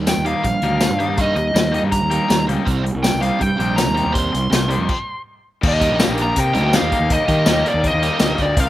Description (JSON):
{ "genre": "indie rock", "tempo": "162 BPM", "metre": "4/4", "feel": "straight", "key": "unclear", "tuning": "A4 = 440 Hz", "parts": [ { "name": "overdriven electric guitar", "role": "riff", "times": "0.0-8.4 s", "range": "C3 to G4", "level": "-24 LUFS", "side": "right 5 dB", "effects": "slapback echo" }, { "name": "fuzz fingered electric bass", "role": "bass", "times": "0.0-8.7 s", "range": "Bb1 to Eb3", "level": "-21 LUFS", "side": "equal", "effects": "overdrive" }, { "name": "smooth overdriven lead guitar", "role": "melody", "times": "0.1-8.7 s", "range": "D5 to C6", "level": "-21 LUFS", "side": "equal", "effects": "none" }, { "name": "crunchy overdriven guitar", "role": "riff", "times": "0.1-8.7 s", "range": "C3 to G4", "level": "-26 LUFS", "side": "left 6 dB", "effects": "slapback echo" }, { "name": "unplugged drum kit", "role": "drums", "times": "0.1-8.7 s", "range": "crash cymbal, hi-hat, kick drum, snare drum, tambourine", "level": "-20 LUFS", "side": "left 1 dB", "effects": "none" }, { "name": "ensemble organ-string", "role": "sustained chords", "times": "5.6-8.7 s", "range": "none", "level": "barely audible", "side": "none", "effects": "none" } ], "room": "little or no reverb", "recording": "none", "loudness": "-15 LUFS", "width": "side -14 dB against mid", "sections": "0.0-5.6 A section; 5.6-8.7 B section", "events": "stop 4.9-5.6", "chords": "0.0 Eb; 2.7 Cm; 5.6 Ebmaj7", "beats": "0.07 0.44 0.81 | 1.19 1.56 1.93 2.30 | 2.67 3.04 3.41 3.78 | 4.15 4.52 4.89 5.26 | 5.63 6.00 6.37 6.74 | 7.10 7.47 7.84 8.21 | 8.57" }